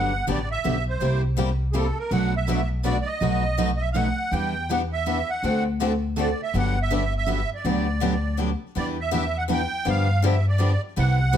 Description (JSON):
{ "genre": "acoustic string swing (jazz manouche)", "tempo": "163 BPM", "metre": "3/4", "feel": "swing 61% on 8ths", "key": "G major", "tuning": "A4 = 438 Hz", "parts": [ { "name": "musette accordion", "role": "melody", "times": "0.0-11.4 s", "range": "Ab4 to G5", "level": "-28 LUFS", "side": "right 3 dB", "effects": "plate reverb" }, { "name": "picked steel-string acoustic guitar", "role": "accompaniment", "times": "0.0-11.4 s", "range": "B2 to B4", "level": "-29 LUFS", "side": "right 6 dB", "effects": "none" }, { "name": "picked swing-style acoustic guitar", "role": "accompaniment", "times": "0.0-11.4 s", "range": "B2 to A4", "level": "-29 LUFS", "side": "left 8 dB", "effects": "none" }, { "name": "upright bass", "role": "bass", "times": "0.0-11.4 s", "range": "G1 to G2", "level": "-24 LUFS", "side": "equal", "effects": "none" } ], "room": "light reverb", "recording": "none", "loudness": "-21 LUFS", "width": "side -9 dB against mid", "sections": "0.0-8.8 A section; 8.8-11.4 B section", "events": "none", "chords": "0.0 Gmaj9; 1.0 C7; 2.1 Bm7; 3.2 B7; 4.3 Em7; 5.4 D7; 6.5 Gmaj7; 8.8 Em7; 9.9 G7", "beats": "0.27 0.64 | 1.00 1.37 1.74 | 2.11 2.48 2.85 | 3.22 3.59 3.96 | 4.33 4.69 5.06 | 5.43 5.80 6.17 | 6.54 6.91 7.28 | 7.65 8.02 8.39 | 8.76 9.13 9.49 | 9.86 10.23 10.60 | 10.97 11.34" }